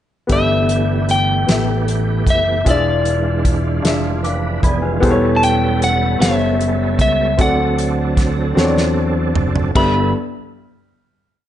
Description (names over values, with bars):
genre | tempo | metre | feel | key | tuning
slow gospel | 51 BPM (dotted quarters) | 6/8 | straight | G major | A4 = 436 Hz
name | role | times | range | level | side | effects
electric slide guitar | melody | 0.3-10.1 s | D5 to B5 | -19 LUFS | left 1 dB | none
warm upright piano | accompaniment | 0.3-10.1 s | G2 to D6 | -20 LUFS | left 2 dB | none
overdriven tonewheel organ | sustained chords | 0.3-10.1 s | E3 to B4 | -22 LUFS | right 3 dB | chorus vibrato, fast rotary speaker
fingered electric bass | bass | 0.3-10.1 s | E1 to E2 | -20 LUFS | equal | none
warm soul drum kit | drums | 0.3-9.9 s | crash cymbal, hi-hat, kick drum, snare drum, toms | -19 LUFS | equal | none
room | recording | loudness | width
moderate large studio reverb, RT60 1.1 s | nothing above 10.4 kHz | -14 LUFS | side -11 dB against mid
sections
0.3-9.8 verse; 9.8-11.5 final chord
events
drum fill 8.6-9.8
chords
0.3 G69; 2.7 E7b9; 5.0 A9/E; 7.4 D7; 9.8 G69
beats
| 0.29 1.48 | 2.66 3.84 | 5.03 6.21 | 7.39 8.58 | 9.76